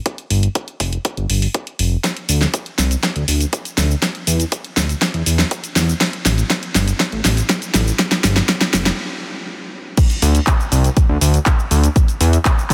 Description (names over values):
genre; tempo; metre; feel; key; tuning
progressive house; 121 BPM; 4/4; straight; unclear; A4 = 440 Hz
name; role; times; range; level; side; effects
electronic kick drum; drums; 0.1-12.7 s; none; -19 LUFS; equal; high-pass filter on kick, high-pass filter on room
pop drum kit; drums; 0.1-12.7 s; cabasa, crash cymbal, handclaps, hi-hat, snare drum; -21 LUFS; equal; none
fat analog bass; bass; 0.3-12.7 s; F1 to E2; -18 LUFS; equal; sidechain pumping
room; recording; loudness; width
light reverb; none; -17 LUFS; mono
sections
0.0-10.0 A section; 10.0-12.7 B section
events
build-up 0.0-10.0; drum fill 2.0-9.0; stop 9.0-10.0; drop 10.0-12.7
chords
none